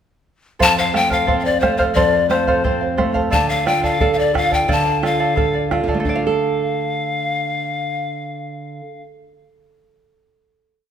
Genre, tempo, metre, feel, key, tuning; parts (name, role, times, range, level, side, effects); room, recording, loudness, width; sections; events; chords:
andean folk, Andean ensemble; 88 BPM; 2/4; straight; D minor; A4 = 441 Hz
breathy pan flute; melody; 0.6-9.0 s; C5 to A5; -19 LUFS; left 4 dB
charango; accompaniment; 0.6-9.7 s; A4 to F5; -21 LUFS; right 2 dB
nylon-string guitar; accompaniment; 0.6-9.2 s; F2 to A4; -22 LUFS; right 3 dB
bombo; percussion; 0.6-6.4 s; -24 LUFS; equal
wet recital hall reverb, RT60 1.6 s; recorded in a church or concert hall; -15 LUFS; side -8 dB against mid
0.6-6.0 A section; 6.0-8.8 final chord
0.6 F; 3.3 Dm